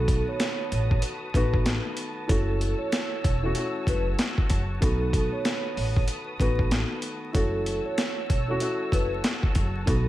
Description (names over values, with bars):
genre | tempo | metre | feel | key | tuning
hip hop, boom-bap hip-hop | 95 BPM | 4/4 | swing 62% on 16ths | F# dorian | A4 = 440 Hz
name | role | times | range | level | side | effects
vibraphone with soft mallets | melody | 0.0-10.1 s | A4 to C#5 | -32 LUFS | right 2 dB | high-pass filter, low-pass filter, ping-pong delay
dark concert grand piano | accompaniment | 0.0-10.1 s | D#3 to F#4 | -32 LUFS | left 1 dB | cassette tape, high-pass filter, low-pass filter
clear studio string section | sustained chords | 0.0-10.1 s | F#4 to E6 | -37 LUFS | left 2 dB | high-pass filter, low-pass filter
upright bass | bass | 0.0-10.1 s | E1 to B1 | -28 LUFS | equal | none
boom bap sampler-style drum kit | drums | 0.1-10.1 s | hi-hat, kick drum, snare drum | -26 LUFS | equal | none
room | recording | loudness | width
small room ambience | vinyl crackle | -24 LUFS | side -15 dB against mid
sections
0.0-10.1 A section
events
none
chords
0.0 B7; 2.3 F#m7; 4.8 B7; 7.3 F#m7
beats
0.40 1.03 1.66 | 2.29 2.92 3.56 4.19 | 4.82 5.45 6.08 6.71 | 7.34 7.98 8.61 9.24 | 9.87